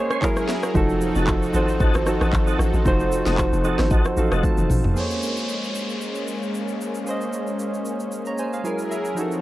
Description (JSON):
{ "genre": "amapiano", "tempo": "114 BPM", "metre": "4/4", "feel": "swing 55% on 16ths", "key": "unclear", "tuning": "A4 = 440 Hz", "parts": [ { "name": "soft electric-piano-like synth keys", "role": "accompaniment", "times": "0.0-9.4 s", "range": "F3 to Bb5", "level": "-25 LUFS", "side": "right 2 dB", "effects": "chorus" }, { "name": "lush unison pad", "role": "sustained chords", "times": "0.0-9.4 s", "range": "F3 to Bb4", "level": "-28 LUFS", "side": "equal", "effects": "chorus, sidechain pumping" }, { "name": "tonewheel organ", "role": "stabs", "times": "0.1-4.4 s", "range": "Db4 to C5", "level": "-30 LUFS", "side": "equal", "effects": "chorus vibrato, slow rotary speaker, tape echo" }, { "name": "afro-pop drum kit", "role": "drums", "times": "0.1-9.4 s", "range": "handclaps, hi-hat, kick drum, rim click, shaker, snare drum, toms", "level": "-24 LUFS", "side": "equal", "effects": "none" }, { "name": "hollow log drum bass", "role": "bass", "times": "0.8-5.0 s", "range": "F1 to A1", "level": "-22 LUFS", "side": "equal", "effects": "none" }, { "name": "downlifter", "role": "sound effects", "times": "5.0-9.2 s", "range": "none", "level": "-33 LUFS", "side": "left 1 dB", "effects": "none" } ], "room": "little or no reverb", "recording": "dry, gritty hardware recording, cassette tape", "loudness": "-20 LUFS", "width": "side -16 dB against mid", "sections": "0.0-5.0 A section; 5.0-9.4 B section", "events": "drop 0.0-5.0; synth keys fill 3.9-5.0, 8.4-9.2; drum fill 4.4-5.0", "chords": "0.2 Gb9; 0.8 F7b9; 5.0 Bbm9; 8.6 Gb9" }